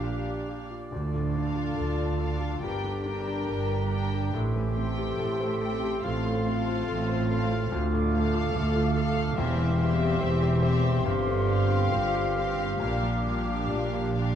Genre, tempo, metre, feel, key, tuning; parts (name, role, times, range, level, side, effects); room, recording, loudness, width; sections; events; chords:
cinematic; 70 BPM; 4/4; rubato; D minor; A4 = 440 Hz
warm studio violin section; melody; 0.0-14.4 s; E5 to G5; -37 LUFS; left 4 dB
bright clarinet; second line; 0.0-14.2 s; F4 to G4; -38 LUFS; left 2 dB
mellow flute section; second line; 0.0-14.3 s; F5 to D6; -39 LUFS; right 1 dB
warm oboe; second line; 0.0-14.2 s; D5 to F5; -38 LUFS; right 1 dB
warm studio violin section; second line; 0.0-14.4 s; G4 to Bb4; -39 LUFS; left 1 dB
felt-muted upright piano; accompaniment; 0.0-14.4 s; D2 to D5; -34 LUFS; left 3 dB
warm studio viola section; accompaniment; 0.0-14.4 s; A3 to D4; -39 LUFS; right 1 dB
dark French horn section; sustained chords; 0.0-14.2 s; A3 to Bb4; -35 LUFS; left 5 dB
dark studio cello section; bass; 0.0-14.4 s; D2 to D3; -31 LUFS; right 1 dB
warm studio double bass section; bass; 0.0-14.4 s; E1 to D2; -29 LUFS; right 2 dB
wet scoring stage reverb, RT60 1.7 s; dark, warm production; -25 LUFS; side -9 dB against mid
0.0-14.4 A section
0.0 Bb6; 0.9 Dm; 2.6 Gm; 4.3 Am7; 6.0 F/A; 7.7 Dm; 9.4 C/E; 11.1 G7sus4; 12.8 Bb6